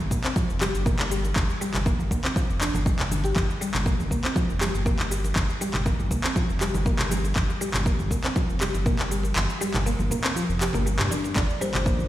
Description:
afro house; 120 BPM; 4/4; straight; G minor; A4 = 440 Hz
round analog bass; bass; 0.0-12.1 s; F1 to G2; -28 LUFS; equal; tube saturation, sidechain pumping
electronic cabasa and handclaps; drums; 0.0-12.1 s; -29 LUFS; left 1 dB; overdrive
mallet-like synth pluck; arpeggios; 0.1-11.9 s; D3 to G4; -30 LUFS; left 1 dB; analog chorus, sidechain pumping, ping-pong delay
electronic kick drum; drums; 0.1-12.0 s; -25 LUFS; equal; overdrive
congas; percussion; 0.1-12.1 s; -32 LUFS; right 2 dB
buzzing kalimba; melody; 11.4-12.1 s; C5 to D5; -31 LUFS; equal
dark analog pad; sustained chords; 11.4-12.1 s; G3 to Bb4; -37 LUFS; equal; chorus, vintage 12-bit sampler grit, sidechain pumping
moderate lush hall reverb, RT60 1.8 s; played on a big sound system in a bare room, stone room reverb; -22 LUFS; side -14 dB against mid
0.0-12.1 A section
kick drops out 9.4-11.4
0.0 Gm7
0.36 0.86 | 1.36 1.86 2.36 2.86 | 3.36 3.86 4.36 4.86 | 5.36 5.86 6.36 6.86 | 7.36 7.86 8.36 8.86 | 9.36 9.86 10.36 10.86 | 11.36 11.86

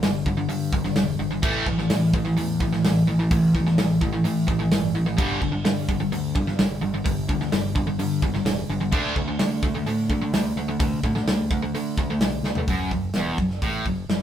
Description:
heavy metal; 128 BPM; 4/4; straight; A4 = 439 Hz
distorted electric guitar; riff; 0.0-14.2 s; E2 to D4; -23 LUFS; equal; distortion
growling fingered electric bass; bass; 0.0-14.2 s; E1 to D3; -31 LUFS; equal; overdrive
modern studio drum kit; drums; 0.0-14.2 s; crash cymbal, hi-hat, kick drum, snare drum, toms; -25 LUFS; equal
light reverb; band playing live in one room; -21 LUFS; side -10 dB against mid
0.0-12.7 A section; 12.7-14.2 B section
drum fill 12.4
0.0 G5; 1.4 A5; 5.2 G5; 8.9 D5; 12.7 F#m
0.03 0.49 0.96 | 1.43 1.90 2.37 2.84 | 3.31 3.78 4.25 4.71 | 5.18 5.65 6.12 6.59 | 7.05 7.52 7.99 8.46 | 8.93 9.39 9.86 10.33 | 10.80 11.27 11.74 12.21 | 12.68 13.15 13.62 14.09

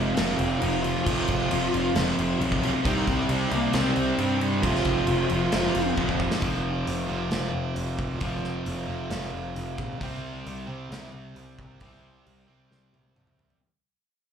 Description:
hard rock; 134 BPM; 4/4; straight; F minor; A4 = 440 Hz
dark smooth lead guitar; melody; 0.0-5.9 s; Ab3 to F4; -30 LUFS; right 1 dB; overdrive, analog delay
overdriven tonewheel organ; sustained chords; 0.0-6.4 s; Eb4 to Ab5; -40 LUFS; equal
crunchy overdriven guitar; riff; 0.0-6.9 s; F2 to C4; -30 LUFS; equal
distorted electric guitar; riff; 0.0-13.6 s; F2 to C4; -31 LUFS; right 9 dB; distortion, slapback echo
sludgy distorted guitar; riff; 0.0-13.6 s; F2 to C4; -32 LUFS; left 10 dB; overdrive
fuzz picked electric bass; bass; 0.0-13.6 s; F1 to G2; -30 LUFS; equal; overdrive
gated 80s drum kit; drums; 0.2-13.6 s; crash cymbal, hi-hat, kick drum, snare drum, toms; -31 LUFS; equal
light reverb; live gig heard through the venue's PA, club reverb; -23 LUFS; side -7 dB against mid
0.0-6.4 A section; 6.4-13.6 B section
drum fill 6.0-6.4, 12.7-13.6; fade-out 6.4-13.6
0.0 Fm; 2.9 Cm; 4.6 Fm; 6.4 F5; 10.0 C5
0.17 0.62 | 1.07 1.51 1.96 2.41 | 2.85 3.30 3.75 4.19 | 4.64 5.08 5.53 5.97 | 6.42 6.87 7.32 7.76 | 8.21 8.66 9.11 9.56 | 10.01 10.46 10.91 11.36 | 11.81 12.26 12.71 13.16

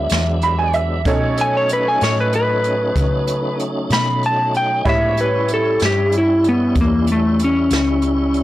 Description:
slow blues; 63 BPM (dotted quarters); 12/8; straight; A4 = 440 Hz
electric slide guitar; melody; 0.0-8.4 s; A3 to B5; -17 LUFS; left 1 dB
clear upright piano; accompaniment; 0.0-8.4 s; C#4 to B5; -24 LUFS; right 4 dB
tonewheel organ; sustained chords; 0.0-8.4 s; F3 to E4; -25 LUFS; equal; slow rotary speaker, overdrive, chorus vibrato
hollow-body short-scale fingered electric bass; bass; 0.0-8.4 s; C#2 to C#3; -22 LUFS; equal; tube saturation
jazz brush drum kit; drums; 0.1-8.4 s; hi-hat, kick drum, snare drum; -22 LUFS; equal; soft clipping on snare
light reverb; blown-out, overdriven recording, overdrive; -15 LUFS; side -15 dB against mid
0.0-8.4 A section
electric slide guitar solo 0.0-8.4; upright piano fill 0.1-1.1
0.0 E9; 1.1 B9; 4.9 A9
0.11 | 1.06 2.01 2.96 3.92 | 4.87 5.82 6.76 7.71

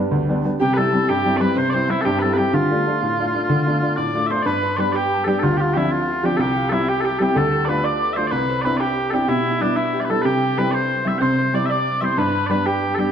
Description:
celtic folk, Celtic slide; 124 BPM (dotted quarters); 12/8; straight; A4 = 442 Hz
Celtic harp; second line; 0.0-13.1 s; D4 to E5; -25 LUFS; equal
clear upright piano; accompaniment; 0.0-13.1 s; C2 to F4; -21 LUFS; equal
mellow small bagpipes; melody; 0.6-13.1 s; D4 to G5; -22 LUFS; right 1 dB
mellow hollow wooden whistle; second line; 0.6-13.1 s; D5 to D6; -29 LUFS; left 3 dB
wet recital hall reverb, RT60 1.4 s; dark, warm production; -17 LUFS; side -8 dB against mid
0.0-4.5 A section; 4.5-13.1 B section
0.0 G; 0.6 C; 2.5 Dm; 4.5 G; 5.4 Dm7; 6.4 C; 7.4 Dm; 8.3 Cadd9; 9.3 Em/B; 10.3 C; 12.2 G
0.12 | 0.60 1.09 1.57 2.05 | 2.54 3.02 3.50 3.98 | 4.47 4.95 5.43 5.91 | 6.40 6.88 7.36 7.84 | 8.32 8.81 9.29 9.77 | 10.25 10.73 11.21 11.70 | 12.18 12.66

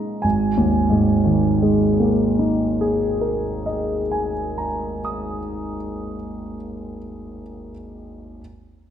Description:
classical, impressionist solo piano; 40 BPM; 4/4; rubato; A4 = 441 Hz
warm grand piano; solo; 0.0-8.4 s; G#1 to D#6; -20 LUFS; equal
moderate scoring stage reverb, RT60 1.9 s; minimal, uncompressed stereo recording; -18 LUFS; side -9 dB against mid
0.2-6.3 A section
0.2 G#sus2
| 0.23 1.71 3.21 4.75

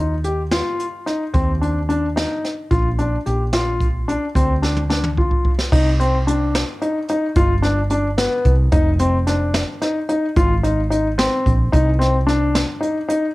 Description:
progressive instrumental, band music in an uneven meter; 220 BPM (eighths); 11/8; straight; C minor; A4 = 440 Hz
warm grand piano; arpeggios; 0.0-13.2 s; B3 to G4; -20 LUFS; left 1 dB; cassette tape, analog delay, plate reverb
woody fretless electric bass; bass; 0.0-12.6 s; F1 to Eb2; -20 LUFS; equal
jazz brush drum kit; drums; 0.2-13.2 s; crash cymbal, hi-hat, kick drum, snare drum, toms; -20 LUFS; right 1 dB; cassette tape
light reverb; home recording on cassette; -16 LUFS; side -19 dB against mid
0.0-5.7 A section; 5.7-13.3 B section
drum fill 4.6-5.7
0.0 N.C.; 2.7 Bb; 5.7 Cm; 7.4 G; 8.7 F5; 10.4 Ab; 11.7 Cm
0.25 0.52 0.80 1.07 1.34 1.62 1.89 2.16 2.44 | 2.71 2.98 3.26 3.53 3.81 4.08 4.35 4.62 4.90 5.17 5.45 | 5.72 5.99 6.26 6.54 6.81 7.08 7.36 7.63 7.90 8.18 8.45 | 8.72 9.00 9.27 9.54 9.81 10.09 10.36 10.63 10.91 11.18 11.45 | 11.72 12.00 12.27 12.54 12.82 13.09

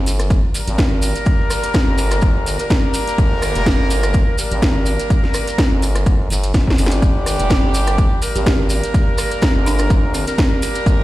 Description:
bass house; 125 BPM; 4/4; swing 55% on 16ths; G phrygian; A4 = 440 Hz
growling FM bass; bass; 0.0-11.0 s; F1 to Ab1; -20 LUFS; equal; overdrive, sidechain pumping
house drum kit; drums; 0.1-11.0 s; hi-hat, rim click, snare drum; -22 LUFS; equal; overdrive
maracas; percussion; 0.1-11.0 s; -29 LUFS; right 1 dB
electronic kick drum; drums; 0.3-11.0 s; -16 LUFS; equal; overdrive
clear horn section; stabs; 0.5-11.0 s; G3 to Bb4; -22 LUFS; equal; sidechain pumping, ping-pong delay
folk marimba with medium mallets; melody; 8.4-10.8 s; C4 to G4; -26 LUFS; right 2 dB; vintage 12-bit sampler grit, ping-pong delay
light reverb, small room ambience; played on a big sound system in a bare room, stone room reverb; -14 LUFS; side -16 dB against mid
0.0-11.0 A section
drum fill 6.5-7.0
0.0 Gm
0.30 0.78 | 1.26 1.74 2.22 2.70 | 3.18 3.66 4.14 4.62 | 5.10 5.58 6.06 6.54 | 7.02 7.50 7.98 8.46 | 8.94 9.42 9.90 10.38 | 10.86

